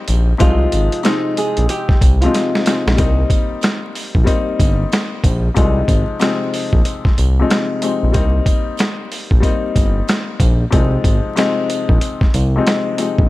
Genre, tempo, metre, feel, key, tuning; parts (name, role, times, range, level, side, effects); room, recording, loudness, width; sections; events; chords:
hip hop, boom-bap hip-hop; 93 BPM; 4/4; swing 63% on 16ths; A4 = 440 Hz
dark grand piano; accompaniment; 0.0-13.3 s; C3 to Eb4; -20 LUFS; left 4 dB; high-pass filter, low-pass filter
smooth gliding synth bass; bass; 0.1-13.3 s; G1 to C2; -16 LUFS; equal
boom bap sampler-style drum kit; drums; 0.1-13.3 s; hi-hat, kick drum, snare drum; -16 LUFS; equal
sleigh bells; percussion; 0.1-13.2 s; -36 LUFS; right 15 dB
nylon-string guitar; melody; 0.4-2.9 s; Eb4 to Ab4; -21 LUFS; right 3 dB; high-pass filter, low-pass filter, slapback echo
small room ambience; vinyl crackle; -13 LUFS; side -18 dB against mid
0.0-3.0 A section; 3.0-13.3 B section
drum fill 2.3-3.0
0.4 Fm7; 3.0 Cm7; 5.6 Fm7; 8.1 Cm7; 10.7 Fm7